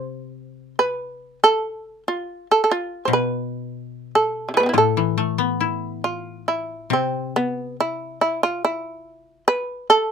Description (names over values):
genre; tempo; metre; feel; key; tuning
japanese traditional, Japanese chamber music; 71 BPM; 2/4; rubato; A hirajoshi; A4 = 439 Hz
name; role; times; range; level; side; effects
shamisen; melody; 0.0-10.1 s; C3 to C5; -19 LUFS; right 2 dB; none
koto; accompaniment; 0.0-9.5 s; A2 to E4; -25 LUFS; left 7 dB; none
room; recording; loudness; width
little or no reverb; close, detailed microphones; -20 LUFS; side -7 dB against mid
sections
0.0-6.9 A section; 6.9-10.1 B section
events
none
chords
none